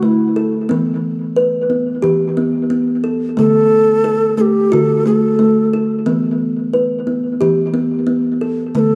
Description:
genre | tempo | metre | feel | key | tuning
world meditative, meditative tuned percussion | 89 BPM | 4/4 | straight | E minor | A4 = 439 Hz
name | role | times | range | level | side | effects
mellow low Native American-style wooden flute | melody | 0.0-8.9 s | E4 to B4 | -17 LUFS | equal | tape echo
kalimba | arpeggios | 0.0-8.9 s | D3 to B4 | -17 LUFS | equal | tape echo
room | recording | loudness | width
wet echo chamber reverb, RT60 1.6 s, small room ambience | dark, warm production | -15 LUFS | mono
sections
0.0-8.9 A section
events
none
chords
0.0 N.C.; 0.7 Em; 3.4 D; 6.1 Em

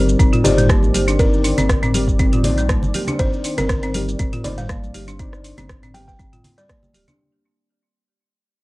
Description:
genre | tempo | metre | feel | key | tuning
afro house | 120 BPM | 4/4 | swing 54% on 16ths | unclear | A4 = 441 Hz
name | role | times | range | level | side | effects
dark analog pad | sustained chords | 0.0-7.2 s | Eb3 to D5 | -28 LUFS | equal | chorus, sidechain pumping, cassette tape
deep mellow chord stab | stabs | 0.0-6.4 s | Eb4 to D5 | -27 LUFS | left 3 dB | chorus, sidechain pumping, cassette tape
warm sub bass | bass | 0.0-7.0 s | D1 to Bb1 | -22 LUFS | equal | sidechain pumping
afro-pop drum kit | drums | 0.1-7.2 s | hi-hat, rim click, shaker, toms | -24 LUFS | equal | studio reverb
folk marimba with hard mallets | arpeggios | 0.2-7.2 s | G3 to G4 | -23 LUFS | left 1 dB | sidechain pumping, cassette tape, analog delay
electronic kick drum | drums | 0.2-6.8 s | none | -18 LUFS | equal | studio reverb
congas | percussion | 0.2-7.2 s | none | -26 LUFS | equal | none
buzzing kalimba | melody | 0.4-6.9 s | G4 to G5 | -26 LUFS | equal | cassette tape, analog delay
room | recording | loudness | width
light reverb | home recording on cassette | -15 LUFS | side -20 dB against mid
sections
0.0-7.2 A section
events
drop 0.0-7.2; fade-out 0.0-7.2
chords
0.0 Cmadd9

